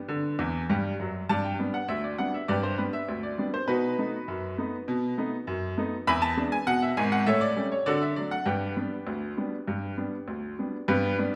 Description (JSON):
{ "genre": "ragtime piano", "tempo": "100 BPM", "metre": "2/4", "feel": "straight", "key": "G major", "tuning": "A4 = 440 Hz", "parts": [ { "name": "bright baby grand piano", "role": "solo", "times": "0.0-11.4 s", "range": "G#1 to B5", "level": "-28 LUFS", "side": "equal", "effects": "none" } ], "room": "wet recital hall reverb, RT60 1.4 s", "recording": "recorded in a church or concert hall", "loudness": "-29 LUFS", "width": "mono", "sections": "0.0-10.9 A section", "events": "grand piano fill 0.4-1.3", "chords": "0.1 D; 1.3 G; 3.7 B7; 6.1 E7; 7.3 A7; 7.9 D; 8.5 G" }